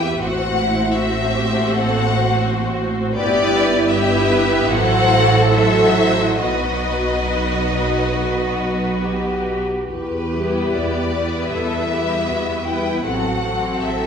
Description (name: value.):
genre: classical, slow romantic movement for string orchestra.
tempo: 66-83 BPM.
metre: 4/4.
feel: rubato.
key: E minor.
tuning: A4 = 440 Hz.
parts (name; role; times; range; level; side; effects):
warm symphonic violin section; melody; 0.0-14.1 s; B4 to G5; -22 LUFS; left 3 dB; none.
rich symphonic violin section; second line; 0.0-14.1 s; C4 to C5; -22 LUFS; left 2 dB; none.
clear studio viola section; accompaniment; 0.0-14.1 s; F#3 to E4; -24 LUFS; right 1 dB; none.
rich symphonic cello section; bass; 0.0-14.1 s; D#4 to B4; -24 LUFS; right 1 dB; none.
rich symphonic double bass section; bass; 0.0-14.1 s; G1 to E2; -23 LUFS; right 3 dB; none.
room: wet recital hall reverb, RT60 1.5 s.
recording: minimal, uncompressed stereo recording.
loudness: -16 LUFS.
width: side -7 dB against mid.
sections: 0.0-14.1 A section.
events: none.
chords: 0.2 F#dim/A; 3.2 Em/G; 4.7 F#m7b5/A; 6.4 B; 9.9 Em; 13.0 F#dim/A.